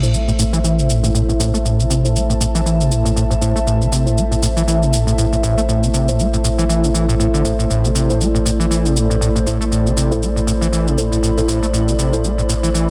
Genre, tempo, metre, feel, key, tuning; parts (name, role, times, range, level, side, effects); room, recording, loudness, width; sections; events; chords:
acid house; 119 BPM; 4/4; swing 56% on 16ths; A minor; A4 = 443 Hz
dark analog pad; sustained chords; 0.0-12.9 s; A3 to E5; -25 LUFS; equal; chorus
overdriven acid bass; riff; 0.0-12.9 s; A2 to A3; -21 LUFS; equal; distortion, subtle chorus, cassette tape
deep mellow chord stab; stabs; 0.0-12.2 s; E4 to C5; -30 LUFS; equal
saturated sub bass; bass; 0.0-12.9 s; A1; -22 LUFS; equal
cabasa; drums; 0.0-12.9 s; -27 LUFS; equal
granular cloud pad; texture; 0.0-12.9 s; E4 to B5; -28 LUFS; equal; built-in reverb
light reverb; dense, heavily limited modern master; -17 LUFS; mono
0.0-12.9 A section
filter sweep on acid bass 0.0-12.9
0.0 Am